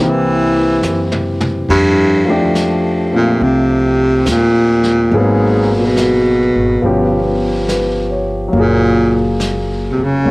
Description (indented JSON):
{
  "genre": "jazz ballad",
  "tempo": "70 BPM",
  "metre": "4/4",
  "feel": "swing 68% on 8ths",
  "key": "unclear",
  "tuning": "A4 = 440 Hz",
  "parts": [
    { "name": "breathy baritone saxophone", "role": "melody", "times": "0.0-10.3 s", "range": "G2 to E3", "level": "-13 LUFS", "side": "equal", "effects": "cassette tape" },
    { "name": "warm concert grand piano", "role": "accompaniment", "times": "0.0-10.3 s", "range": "E3 to C#5", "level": "-16 LUFS", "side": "left 1 dB", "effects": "cassette tape" },
    { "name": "upright bass", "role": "bass", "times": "0.0-10.3 s", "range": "F1 to Gb2", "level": "-19 LUFS", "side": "equal", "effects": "none" },
    { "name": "vintage brush drum kit", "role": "drums", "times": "0.8-10.3 s", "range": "brushed snare drum, hi-hat, kick drum, ride cymbal, snare drum, toms", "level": "-24 LUFS", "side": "equal", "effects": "cassette tape" }
  ],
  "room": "light reverb",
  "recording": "home recording on cassette",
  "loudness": "-11 LUFS",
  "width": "side -23 dB against mid",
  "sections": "0.0-1.7 A section; 1.7-10.3 A section",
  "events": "drum fill 0.8-1.7",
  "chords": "0.0 C7; 1.7 F69; 5.1 Abm9; 6.8 G7#11; 8.5 Gbmaj9"
}